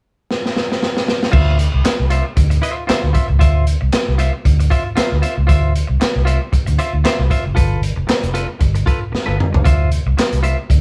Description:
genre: funk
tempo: 115 BPM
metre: 4/4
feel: swing 56% on 16ths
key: D dorian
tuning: A4 = 440 Hz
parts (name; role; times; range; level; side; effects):
- crunchy breakbeat drum kit; drums; 0.3-10.8 s; crash cymbal, handclaps, hi-hat, kick drum, snare drum, toms; -19 LUFS; equal; none
- clean electric guitar; accompaniment; 1.3-10.7 s; F4 to E5; -26 LUFS; equal; none
- vintage muted fingered electric bass; bass; 1.3-10.8 s; F1 to D2; -18 LUFS; equal; none
room: moderate studio ambience, RT60 0.5 s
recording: band playing live in one room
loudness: -16 LUFS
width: mono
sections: 0.0-1.3 A section; 1.3-10.8 B section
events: drum fill 0.3-1.3, 9.1-9.7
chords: 0.0 N.C.; 1.3 Dm9; 7.6 G9; 9.7 Dm9

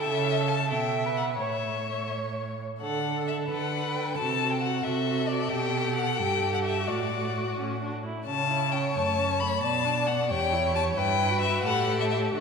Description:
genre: quick classical-period movement for string quartet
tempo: 88 BPM (dotted quarters)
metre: 6/8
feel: straight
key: D major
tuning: A4 = 440 Hz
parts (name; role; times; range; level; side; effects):
- rich violin; melody; 0.0-12.4 s; D5 to B5; -29 LUFS; left 6 dB; none
- warm violin; second line; 0.0-12.4 s; F#4 to D5; -31 LUFS; left 1 dB; none
- warm viola; accompaniment; 0.0-12.4 s; A3 to E5; -33 LUFS; right 2 dB; none
- rich cello; bass; 0.1-12.4 s; E2 to D3; -31 LUFS; right 4 dB; none
room: wet concert hall reverb, RT60 2.2 s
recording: minimal, uncompressed stereo recording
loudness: -25 LUFS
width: side -5 dB against mid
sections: 0.0-2.8 A section; 2.8-12.4 B section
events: none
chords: 0.0 A7/C#; 1.4 A; 2.8 D; 4.2 D9/C (rootless); 5.5 G/B; 6.9 D/A; 7.6 A; 8.3 A7/C#; 9.0 F#m; 9.6 Bm7; 10.3 Em; 11.0 Em/G; 11.7 Emadd11/A (rootless)

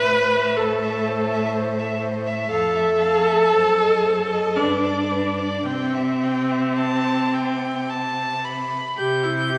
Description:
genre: classical, slow romantic movement for string quartet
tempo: 53-63 BPM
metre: 3/4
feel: rubato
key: C major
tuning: A4 = 440 Hz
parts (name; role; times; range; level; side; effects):
- rich violin; melody; 0.0-9.6 s; C5 to G6; -30 LUFS; equal; none
- rich violin; second line; 0.0-9.0 s; B4 to B5; -30 LUFS; equal; none
- dark viola; accompaniment; 0.0-9.6 s; C4 to B4; -23 LUFS; equal; none
- rich cello; bass; 0.0-9.6 s; F2 to C3; -31 LUFS; equal; none
room: wet recital hall reverb, RT60 1.8 s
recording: vinyl crackle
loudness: -21 LUFS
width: mono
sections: 0.0-9.0 A section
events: none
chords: 0.0 Am; 2.5 Fmaj7; 3.5 F#dim7; 4.6 G; 5.7 C5; 9.0 C

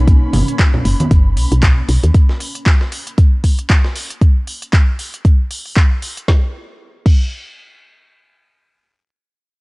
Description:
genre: deep house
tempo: 116 BPM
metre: 4/4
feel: swing 57% on 16ths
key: B major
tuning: A4 = 445 Hz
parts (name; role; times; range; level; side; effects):
- woody FM bass; bass; 0.0-2.1 s; F#1 to D#2; -14 LUFS; equal; sidechain pumping
- ethereal airy pad; texture; 0.0-2.1 s; A#3 to B5; -27 LUFS; equal; ensemble chorus, built-in reverb, tremolo, sidechain pumping
- breakbeat sampler-style drum kit; drums; 0.1-4.2 s; hi-hat, snare drum; -30 LUFS; equal; high-pass filter on hats, vintage 12-bit sampler grit, high-pass filter on snare
- deep house drum kit; drums; 0.1-7.2 s; crash cymbal, handclaps, hi-hat, snare drum; -23 LUFS; equal; vintage 12-bit sampler grit
- electronic kick drum; drums; 0.1-7.2 s; none; -11 LUFS; equal; vintage 12-bit sampler grit
- congas; percussion; 0.3-1.1 s; none; -19 LUFS; right 1 dB; sidechain pumping on perc
room: little or no reverb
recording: dry, gritty hardware recording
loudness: -12 LUFS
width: side -25 dB against mid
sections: 0.0-6.3 A section; 6.3-9.6 B section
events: none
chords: 0.0 Bmaj9; 2.1 N.C.

